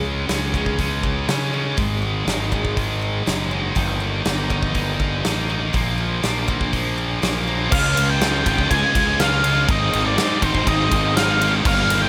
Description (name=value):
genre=quiet-loud alternative rock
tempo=121 BPM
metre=4/4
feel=straight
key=unclear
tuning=A4 = 440 Hz
part: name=picked steel-string acoustic guitar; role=arpeggios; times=0.0-7.7 s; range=G2 to Ab3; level=-35 LUFS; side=equal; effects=none
part: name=scooped high-gain guitar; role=riff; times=0.0-12.1 s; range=G2 to F4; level=-25 LUFS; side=equal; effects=distortion
part: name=fuzz fingered electric bass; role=bass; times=0.0-12.1 s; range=Gb1 to Db3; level=-26 LUFS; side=equal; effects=overdrive
part: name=huge arena drum kit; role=drums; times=0.3-12.0 s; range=crash cymbal, hi-hat, kick drum, ride cymbal, snare drum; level=-26 LUFS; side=equal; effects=none
part: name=octave-fuzz lead guitar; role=melody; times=7.7-12.1 s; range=C5 to Ab5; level=-24 LUFS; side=equal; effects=distortion
part: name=soft string machine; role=sustained chords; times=7.7-12.1 s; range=Eb4 to G5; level=-35 LUFS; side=equal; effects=none
part: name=thick fuzz guitar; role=riff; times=7.7-12.1 s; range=G2 to F4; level=-29 LUFS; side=equal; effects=distortion
room=light reverb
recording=none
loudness=-20 LUFS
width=mono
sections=0.0-7.7 A section; 7.7-12.1 B section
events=none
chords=0.0 Db; 1.8 Ab5; 3.8 Ebadd9/G; 5.7 Bb; 7.7 Db; 9.7 Ab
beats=0.29 0.79 1.28 | 1.78 2.27 2.77 3.26 | 3.76 4.26 4.75 5.25 | 5.74 6.24 6.73 7.23 | 7.72 8.21 8.71 9.20 | 9.69 10.18 10.67 11.16 | 11.65